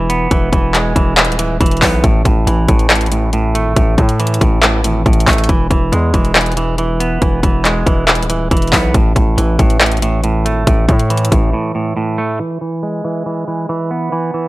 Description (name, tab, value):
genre	hip hop, trap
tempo	139 BPM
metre	4/4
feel	half-time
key	E major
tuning	A4 = 439 Hz
part	semi-hollow electric guitar	accompaniment	0.0-14.5 s	A2 to B3	-17 LUFS	right 2 dB	low-pass filter
part	distorted 808-style bass	bass	0.0-11.5 s	D#1 to A2	-16 LUFS	equal	distortion
part	trap drum kit	drums	0.1-11.4 s	handclaps, hi-hat, kick drum	-13 LUFS	equal	overdrive
room	digital ambience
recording	none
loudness	-11 LUFS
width	side -18 dB against mid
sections	0.0-12.4 A section; 12.4-14.5 B section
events	break 11.5-12.4; filter sweep on clean electric guitar 12.4-14.5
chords	0.0 E; 2.0 A5; 5.5 E; 8.9 A5; 12.4 E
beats	| 0.31 0.74 1.17 1.61 | 2.04 2.47 2.90 3.33 | 3.76 4.20 4.63 5.06 | 5.49 5.92 6.35 6.79 | 7.22 7.65 8.08 8.51 | 8.94 9.38 9.81 10.24 | 10.67 11.10 11.53 11.97 | 12.40 12.83 13.26 13.69 | 14.12